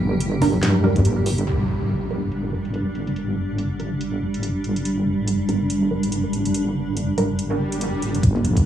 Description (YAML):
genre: deep dubstep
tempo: 142 BPM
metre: 4/4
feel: swing 58% on 16ths, half-time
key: G minor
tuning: A4 = 439 Hz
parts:
  - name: granular cloud pad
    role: sustained chords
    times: 0.0-8.7 s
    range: G3 to G4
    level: -24 LUFS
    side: right 1 dB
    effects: built-in reverb
  - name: wobble bass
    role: bass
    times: 0.0-8.7 s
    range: G1 to G2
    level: -23 LUFS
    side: equal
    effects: chorus
  - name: garage drum kit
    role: drums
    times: 0.2-8.6 s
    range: hi-hat, snare drum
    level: -31 LUFS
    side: equal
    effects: low-pass filter on hats, small room ambience, low-pass filter on snare
  - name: filtered dub chord stab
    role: stabs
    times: 0.4-7.3 s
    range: G3 to Bb4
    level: -27 LUFS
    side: right 3 dB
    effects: phaser, dub echo
  - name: congas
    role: percussion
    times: 0.4-1.0, 8.4-8.5 s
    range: none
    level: -27 LUFS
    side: left 1 dB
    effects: dub echo
  - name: electronic kick drum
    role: drums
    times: 1.0, 8.2-8.6 s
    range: none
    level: -19 LUFS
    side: equal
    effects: small room ambience
  - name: impact and swell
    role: sound effects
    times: 1.5-3.2, 7.5-8.2 s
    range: none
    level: -29 LUFS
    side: equal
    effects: none
room: light reverb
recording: dry, gritty hardware recording, cassette tape, small room ambience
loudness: -20 LUFS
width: side -10 dB against mid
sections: 0.0-1.5 A section; 1.5-8.2 B section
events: impact 1.5-3.2; filter sweep on drum 1.5-8.2; swell 7.5-8.2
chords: 0.0 Gm; 1.5 G5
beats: 0.20 0.63 1.05 | 1.47 1.90 2.32 2.74 | 3.16 3.59 4.01 4.43 | 4.85 5.28 5.70 6.12 | 6.54 6.97 7.39 7.81 | 8.23 8.66